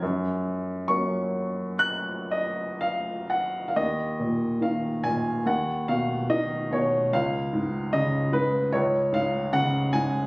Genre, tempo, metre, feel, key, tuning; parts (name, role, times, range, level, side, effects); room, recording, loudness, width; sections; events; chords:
classical, lyrical solo piano; 58-76 BPM; 4/4; rubato; F# major, Eb minor from 3.8 s; A4 = 440 Hz
warm baby grand piano; solo; 0.0-10.3 s; Db2 to F#6; -23 LUFS; equal
light reverb; recorded on a phone in the room, club reverb; -23 LUFS; side -25 dB against mid
0.0-3.8 A section; 3.8-10.3 B section
0.0 F#; 3.8 Eb5; 5.5 Badd9/D#; 7.1 Db